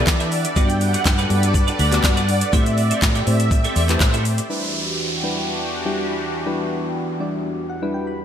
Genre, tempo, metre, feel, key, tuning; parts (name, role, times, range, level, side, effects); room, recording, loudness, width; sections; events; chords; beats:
dance-pop; 122 BPM; 4/4; straight; E minor; A4 = 439 Hz
supersaw pad; melody; 0.0-4.0 s; C5 to G5; -25 LUFS; right 1 dB; lush chorus, sidechain pumping, digital delay
soft electric-piano-like synth keys; accompaniment; 0.0-8.2 s; G3 to B5; -27 LUFS; left 2 dB; chorus, sidechain pumping
sweeping resonant pad; sustained chords; 0.0-8.2 s; E2 to F#5; -27 LUFS; equal; chorus, sidechain pumping
twelve-string electric guitar; riff; 0.0-4.4 s; C4 to E5; -28 LUFS; right 5 dB; ensemble chorus
vintage muted fingered electric bass; bass; 0.1-4.4 s; D2 to E3; -20 LUFS; equal; sidechain pumping
smooth R&B drum kit; drums; 0.1-4.5 s; handclaps, hi-hat, kick drum, shaker, snare drum; -19 LUFS; equal; gated reverb
tube shaker; percussion; 0.1-4.5 s; -36 LUFS; left 9 dB
downlifter; sound effects; 4.5-8.2 s; -28 LUFS; right 1 dB
moderate lush hall reverb, RT60 1.9 s; bright 1980s-style digital production; -17 LUFS; side -9 dB against mid
0.0-4.5 A section; 4.5-8.2 B section
drop 0.0-4.5; synth keys fill 7.4-8.2
0.0 Em7; 0.6 Gmaj7; 2.5 Am7; 4.5 Em7
0.07 | 0.56 1.05 1.55 2.04 | 2.53 3.02 3.51 4.01 | 4.50 4.99 5.48 5.97 | 6.46 6.96 7.45 7.94